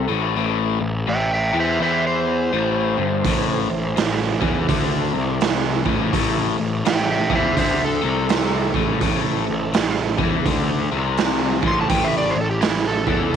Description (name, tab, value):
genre	blues rock power trio and southern rock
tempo	83 BPM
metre	4/4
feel	swing 62% on 8ths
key	A minor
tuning	A4 = 440 Hz
part	overdriven slide guitar	melody	0.0-13.4 s	E4 to C6	-23 LUFS	right 3 dB	none
part	tonewheel organ	sustained chords	0.0-13.4 s	E4 to E5	-33 LUFS	right 11 dB	none
part	overdriven electric guitar	riff	0.0-13.3 s	G2 to E3	-24 LUFS	left 13 dB	none
part	fuzz picked electric bass	bass	0.0-13.3 s	G1 to E2	-23 LUFS	left 1 dB	overdrive
part	raw garage drum kit	drums	3.2-13.2 s	hi-hat, kick drum, snare drum	-22 LUFS	right 5 dB	none
room	light reverb, studio reverb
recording	1960s-style stereo with parts hard left and right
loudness	-18 LUFS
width	side -8 dB against mid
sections	0.0-13.4 A section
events	none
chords	0.0 Am